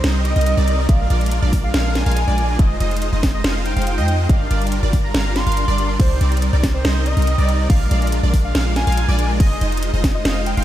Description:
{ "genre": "future bass", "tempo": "141 BPM", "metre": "4/4", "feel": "half-time", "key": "C minor", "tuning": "A4 = 440 Hz", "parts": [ { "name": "warm velvety synth lead", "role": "melody", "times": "0.0-10.6 s", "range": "C5 to C6", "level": "-26 LUFS", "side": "equal", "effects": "chorus, sidechain pumping, tape echo" }, { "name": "wide unison pluck", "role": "arpeggios", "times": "0.0-10.6 s", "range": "D5 to F5", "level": "-30 LUFS", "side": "right 1 dB", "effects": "phaser, sidechain pumping" }, { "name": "supersaw chords", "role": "riff", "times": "0.0-10.6 s", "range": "G3 to F5", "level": "-24 LUFS", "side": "right 1 dB", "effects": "analog chorus, sidechain pumping, tape echo" }, { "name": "warm 808-style bass", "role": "bass", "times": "0.0-10.6 s", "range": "F1 to F2", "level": "-18 LUFS", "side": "equal", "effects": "sidechain pumping" }, { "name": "trap drum kit", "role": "drums", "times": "0.0-10.6 s", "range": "crash cymbal, hi-hat, snare drum", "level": "-25 LUFS", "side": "right 1 dB", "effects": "studio reverb" }, { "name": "electronic kick drum", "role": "drums", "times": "0.9-10.1 s", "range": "none", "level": "-16 LUFS", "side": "equal", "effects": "studio reverb" } ], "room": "light reverb", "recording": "none", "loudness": "-15 LUFS", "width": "side -13 dB against mid", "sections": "0.0-10.6 A section", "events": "none", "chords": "0.0 Cm9; 0.9 Bb7; 2.6 Fm7; 4.3 Gm7; 6.0 Cm9; 7.7 Bb7; 9.4 Fm7" }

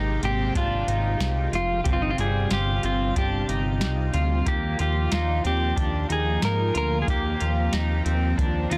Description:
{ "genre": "dream pop", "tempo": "92 BPM", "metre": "4/4", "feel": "straight", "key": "Eb major", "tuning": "A4 = 438 Hz", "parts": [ { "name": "clean electric guitar", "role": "melody", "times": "0.0-8.8 s", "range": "Eb4 to Bb4", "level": "-30 LUFS", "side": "equal", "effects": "spring reverb, digital delay" }, { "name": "string machine, full ensemble", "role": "sustained chords", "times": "0.0-8.8 s", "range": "C3 to D5", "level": "-34 LUFS", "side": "equal", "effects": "ensemble chorus" }, { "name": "electric guitar at the edge of break-up", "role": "arpeggios", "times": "0.0-8.8 s", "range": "G3 to F4", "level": "-33 LUFS", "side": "equal", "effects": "subtle chorus, digital delay" }, { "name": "fat analog bass", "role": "bass", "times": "0.0-8.8 s", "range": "F1 to Ab2", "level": "-28 LUFS", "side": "equal", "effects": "none" }, { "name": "soft vintage rhythm box", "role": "drums", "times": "0.2-8.8 s", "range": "hi-hat, kick drum, snare drum", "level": "-30 LUFS", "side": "equal", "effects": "none" } ], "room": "light reverb", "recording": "dense, heavily limited modern master", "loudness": "-24 LUFS", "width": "mono", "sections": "0.0-8.8 A section", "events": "none", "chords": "0.0 Abmaj9; 1.9 G7sus4; 4.5 Ebmaj9" }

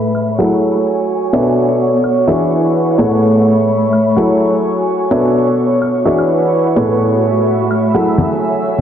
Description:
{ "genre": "piano house", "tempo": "127 BPM", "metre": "4/4", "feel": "swing 56% on 16ths", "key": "F# minor", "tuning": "A4 = 440 Hz", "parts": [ { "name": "rich symphonic violin section", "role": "sustained chords", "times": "0.0-8.8 s", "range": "B4 to E6", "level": "-19 LUFS", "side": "equal", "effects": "none" }, { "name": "clear grand piano", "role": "riff", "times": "0.0-8.8 s", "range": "A2 to F#5", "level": "-14 LUFS", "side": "equal", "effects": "diffuse ambient delay" }, { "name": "muted studio string section", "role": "texture", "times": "0.0-8.8 s", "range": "A3 to B5", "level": "-17 LUFS", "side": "right 1 dB", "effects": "none" }, { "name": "woodblock", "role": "drums", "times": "0.1-7.8 s", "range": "none", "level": "-32 LUFS", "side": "left 1 dB", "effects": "none" }, { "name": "swell", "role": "sound effects", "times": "7.1-7.9 s", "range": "none", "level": "-22 LUFS", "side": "left 1 dB", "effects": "none" }, { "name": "tambourine and congas", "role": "percussion", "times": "7.9-8.8 s", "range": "none", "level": "-17 LUFS", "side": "left 1 dB", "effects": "none" } ], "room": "wet lush hall reverb, RT60 1.9 s, small room ambience", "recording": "dreamy mix soaked in reverb, low-pass filter", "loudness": "-11 LUFS", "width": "side -9 dB against mid", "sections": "0.0-8.8 A section", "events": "filter sweep 0.0-8.8; swell 7.1-7.9", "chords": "0.4 F#m9; 1.3 Bm11; 2.3 E9; 3.0 Amaj9; 4.2 F#m9; 5.1 Bm11; 6.1 E9; 6.8 Amaj9; 7.9 F#m9" }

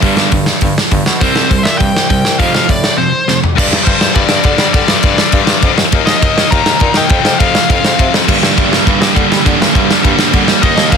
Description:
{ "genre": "punk rock", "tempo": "204 BPM", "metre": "4/4", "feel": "straight", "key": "G minor from 3.6 s", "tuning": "A4 = 441 Hz", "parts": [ { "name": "distorted electric guitar", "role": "riff", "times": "0.0-11.0 s", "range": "F2 to Eb4", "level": "-15 LUFS", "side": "left 15 dB", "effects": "overdrive" }, { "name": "overdriven semi-hollow guitar", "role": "riff", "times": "0.0-3.4, 8.3-11.0 s", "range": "F2 to Eb4", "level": "-15 LUFS", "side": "right 15 dB", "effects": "none" }, { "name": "warm bassoon", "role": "bass", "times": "0.0-11.0 s", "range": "C2 to G3", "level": "-20 LUFS", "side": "equal", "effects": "none" }, { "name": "big rock drum kit", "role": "drums", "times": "0.0-11.0 s", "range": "crash cymbal, hi-hat, kick drum, ride cymbal, snare drum, toms", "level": "-12 LUFS", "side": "equal", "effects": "none" }, { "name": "nasal lead guitar with a parked wah", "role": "melody", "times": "1.2-8.1, 10.6-11.0 s", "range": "C5 to Bb5", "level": "-16 LUFS", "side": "left 1 dB", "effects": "overdrive" } ], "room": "light reverb", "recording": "dense, heavily limited modern master", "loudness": "-9 LUFS", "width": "side -6 dB against mid", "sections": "0.0-3.6 A section; 3.6-11.0 B section", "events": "drum fill 3.3", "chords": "0.0 G5; 1.2 C5; 2.4 F; 3.6 G5; 5.8 Eb5; 7.1 F5; 8.3 Gm" }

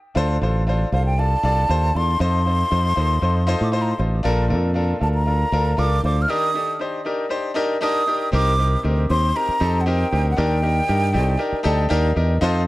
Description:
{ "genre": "uptempo 1960s-style soul", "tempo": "118 BPM", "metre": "4/4", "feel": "straight", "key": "unclear", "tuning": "A4 = 443 Hz", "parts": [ { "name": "bright grand piano", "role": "accompaniment", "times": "0.1-12.6 s", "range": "Bb2 to Bb5", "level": "-23 LUFS", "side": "left 2 dB", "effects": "none" }, { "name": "fingered electric bass", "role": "bass", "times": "0.2-12.7 s", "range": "A1 to A2", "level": "-19 LUFS", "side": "equal", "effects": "none" }, { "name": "breathy concert flute", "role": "melody", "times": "0.9-11.9 s", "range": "F5 to F6", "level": "-23 LUFS", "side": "equal", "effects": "tape echo" } ], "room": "light reverb", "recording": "dark, warm production", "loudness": "-18 LUFS", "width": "side -18 dB against mid", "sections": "0.2-8.3 A section; 8.3-12.7 B section", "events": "stop 0.0; break 6.3-8.3; grand piano fill 7.6-8.3, 11.4-12.4", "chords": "0.2 Dm7; 2.2 F7; 4.2 Bbmaj7; 6.3 Ebmaj7; 8.3 Cm7; 10.4 Ebmaj7" }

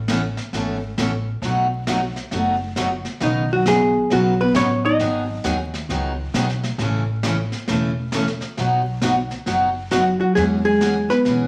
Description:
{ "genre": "country, western swing", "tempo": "134 BPM", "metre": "4/4", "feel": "swing 65% on 8ths", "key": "unclear", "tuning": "A4 = 440 Hz", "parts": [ { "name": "upright bass", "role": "bass", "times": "0.0-11.5 s", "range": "E1 to E2", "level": "-29 LUFS", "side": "equal", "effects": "none" }, { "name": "picked steel-string acoustic guitar", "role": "accompaniment", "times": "0.1-11.5 s", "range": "B2 to B4", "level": "-25 LUFS", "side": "equal", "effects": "none" }, { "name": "jazz brush drum kit", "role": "drums", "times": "0.1-11.5 s", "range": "brushed snare drum, hi-hat, snare drum", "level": "-31 LUFS", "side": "equal", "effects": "none" }, { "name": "archtop guitar, miked and amplified", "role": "melody", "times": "3.2-6.2, 9.9-11.5 s", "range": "D#4 to D#5", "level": "-22 LUFS", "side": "equal", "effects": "none" }, { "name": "buzzing marimba with medium mallets", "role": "second line", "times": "3.3-6.1, 9.9-11.5 s", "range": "D#3 to D#4", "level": "-23 LUFS", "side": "equal", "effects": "none" } ], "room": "moderate large studio reverb, RT60 0.8 s", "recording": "vinyl crackle", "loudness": "-21 LUFS", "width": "mono", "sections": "0.0-10.4 A section; 10.4-11.5 B section", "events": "none", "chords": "0.0 Aadd9; 1.4 B7; 3.2 Badd9; 5.0 G#m7; 6.8 A; 8.6 B; 10.4 E6" }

